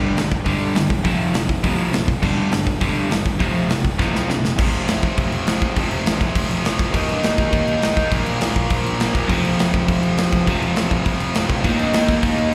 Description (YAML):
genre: punk rock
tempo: 204 BPM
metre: 4/4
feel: straight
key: unclear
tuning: A4 = 441 Hz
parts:
  - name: overdriven electric guitar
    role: riff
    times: 0.0-4.4, 9.3-12.5 s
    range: F2 to Eb4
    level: -24 LUFS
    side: equal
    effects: none
  - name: tight distorted guitar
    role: riff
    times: 0.0-12.5 s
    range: F2 to Eb4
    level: -26 LUFS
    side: equal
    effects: distortion, slapback echo
  - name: fuzz picked electric bass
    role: bass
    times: 0.0-12.5 s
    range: E1 to Bb2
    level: -27 LUFS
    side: equal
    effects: overdrive
  - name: big rock drum kit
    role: drums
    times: 0.2-12.4 s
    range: crash cymbal, hi-hat, kick drum, snare drum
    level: -24 LUFS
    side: equal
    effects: none
room: studio ambience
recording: live gig heard through the venue's PA, recital hall reverb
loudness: -19 LUFS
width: mono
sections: 0.0-4.6 A section; 4.6-12.5 B section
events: drum fill 4.0-4.6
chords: 0.0 G5; 1.1 F5; 2.2 G5; 3.4 F5; 6.9 Eb5; 8.1 Bb5; 9.3 F5; 11.6 Eb